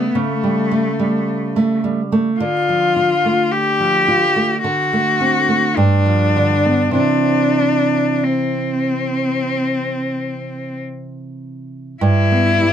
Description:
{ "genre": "romantic duo for cello and classical guitar", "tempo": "46-54 BPM", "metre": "4/4", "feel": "rubato", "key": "C major", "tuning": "A4 = 445 Hz", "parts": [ { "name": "clear cello", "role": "melody", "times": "0.0-12.7 s", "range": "A3 to G4", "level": "-17 LUFS", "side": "left 3 dB", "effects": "none" }, { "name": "nylon-string guitar", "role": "accompaniment", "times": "0.0-12.7 s", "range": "G2 to F4", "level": "-18 LUFS", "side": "right 2 dB", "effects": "none" } ], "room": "light reverb", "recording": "close, detailed microphones", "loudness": "-14 LUFS", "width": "side -9 dB against mid", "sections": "0.0-12.0 A section", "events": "none", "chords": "0.0 A7/C#; 2.4 Dm; 4.6 D7; 5.8 G7; 7.0 C; 12.0 G", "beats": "0.14 1.28 | 2.39 3.51 4.63 5.76 | 6.96 8.23 9.53 10.78 | 12.02" }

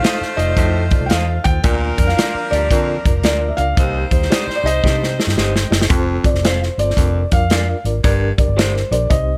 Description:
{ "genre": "uptempo 1960s-style soul", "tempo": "112 BPM", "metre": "4/4", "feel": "swing 64% on 8ths", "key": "Bb major", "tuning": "A4 = 441 Hz", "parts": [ { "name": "felt-muted upright piano", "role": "melody", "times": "0.0-9.4 s", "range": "C5 to G5", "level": "-24 LUFS", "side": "equal", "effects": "none" }, { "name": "bright saxophone section", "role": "second line", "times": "0.0-5.7 s", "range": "F3 to C5", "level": "-28 LUFS", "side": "equal", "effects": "slapback echo" }, { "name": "reed electric piano", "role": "accompaniment", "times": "0.0-9.4 s", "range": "G2 to F5", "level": "-28 LUFS", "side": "equal", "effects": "fast tremolo" }, { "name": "tonewheel organ", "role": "sustained chords", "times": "0.0-5.9 s", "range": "D3 to G4", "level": "-36 LUFS", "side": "equal", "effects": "none" }, { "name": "electric guitar through a small old amp", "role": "stabs", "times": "0.0-8.7 s", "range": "F4 to F5", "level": "-30 LUFS", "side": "equal", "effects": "none" }, { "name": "natural country drum kit", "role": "drums", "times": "0.0-9.3 s", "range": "hi-hat, kick drum, snare drum", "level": "-19 LUFS", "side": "equal", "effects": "none" }, { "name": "vintage muted fingered electric bass", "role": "bass", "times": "0.2-9.4 s", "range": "F1 to D3", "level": "-22 LUFS", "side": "equal", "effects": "none" }, { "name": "growling baritone saxophone", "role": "riff", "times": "0.6-8.3 s", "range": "Eb2 to Bb2", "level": "-27 LUFS", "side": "equal", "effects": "none" } ], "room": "little or no reverb", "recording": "none", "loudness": "-17 LUFS", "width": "mono", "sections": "0.0-5.9 A section; 5.9-9.4 B section", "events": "drum fill 4.8-5.9", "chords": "0.0 F7; 1.6 Bb/D; 3.8 Cm; 5.9 F; 7.0 Bb/F; 8.0 Gm", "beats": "0.04 0.58 1.11 | 1.64 2.18 2.71 3.24 | 3.78 4.31 4.84 5.38 | 5.91 6.44 6.98 7.51 | 8.05 8.58 9.12" }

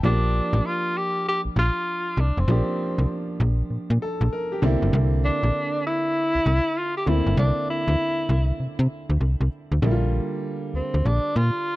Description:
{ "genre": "R&B, new jack swing", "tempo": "98 BPM", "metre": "4/4", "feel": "swing 64% on 16ths", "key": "unclear", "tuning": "A4 = 439 Hz", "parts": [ { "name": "warm tenor saxophone", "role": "melody", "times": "0.0-11.8 s", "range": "C4 to G4", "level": "-25 LUFS", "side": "equal", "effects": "none" }, { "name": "bright concert grand piano", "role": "accompaniment", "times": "0.0-11.8 s", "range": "D3 to Bb4", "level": "-28 LUFS", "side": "right 1 dB", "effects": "none" }, { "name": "slap-like FM bass", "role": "bass", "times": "0.0-11.5 s", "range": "F1 to C3", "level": "-20 LUFS", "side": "equal", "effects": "none" } ], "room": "small room ambience", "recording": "dry, close 1970s-style studio recording", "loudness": "-21 LUFS", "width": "side -18 dB against mid", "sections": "0.0-9.8 A section; 9.8-11.8 B section", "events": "none", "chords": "0.0 Bb6; 4.6 C9; 9.8 Bb6", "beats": "| 0.03 0.64 1.25 1.87 | 2.48 3.09 3.70 4.32 | 4.93 5.54 6.15 6.76 | 7.38 7.99 8.60 9.21 | 9.83 10.44 11.05 11.66" }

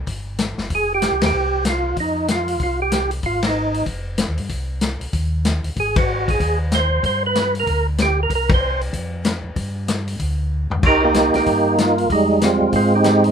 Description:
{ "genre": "soul jazz organ trio", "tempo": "190 BPM", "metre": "4/4", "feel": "swing 62% on 8ths", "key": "C minor", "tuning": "A4 = 440 Hz", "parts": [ { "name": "mellow tonewheel organ", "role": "bass", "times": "0.0-13.3 s", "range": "F1 to Ab2", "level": "-24 LUFS", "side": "equal", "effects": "slow rotary speaker" }, { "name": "vintage drum kit", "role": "drums", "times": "0.1-13.3 s", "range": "crash cymbal, hi-hat, kick drum, ride cymbal, snare drum, toms", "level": "-22 LUFS", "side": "left 2 dB", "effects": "none" }, { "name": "percussive tonewheel organ", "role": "melody", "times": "0.7-8.8, 10.9-13.3 s", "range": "G3 to C5", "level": "-17 LUFS", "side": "right 2 dB", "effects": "overdrive, chorus vibrato, stopped rotary speaker" } ], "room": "light reverb", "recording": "minimal, uncompressed stereo recording", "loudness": "-17 LUFS", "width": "side -7 dB against mid", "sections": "0.0-10.8 A section; 10.8-13.3 A section", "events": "band accent 1.2, 3.4, 5.9, 8.5; drum fill 10.5-10.8", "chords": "0.0 N.C.; 0.7 Fm9; 4.5 Cm; 5.8 Ab7; 7.0 G; 8.3 Bbsus2/C; 8.9 N.C.; 9.6 G5; 10.8 Cm7; 12.1 Fm9", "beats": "0.07 0.39 | 0.70 1.02 1.34 1.66 | 1.97 2.29 2.61 2.92 | 3.24 3.56 3.87 4.19 | 4.50 4.82 5.14 5.45 | 5.77 6.09 6.40 6.72 | 7.04 7.35 7.67 7.99 | 8.30 8.62 8.94 9.25 | 9.57 9.88 10.20 10.52 | 10.84 11.15 11.47 11.78 | 12.10 12.42 12.73 13.05" }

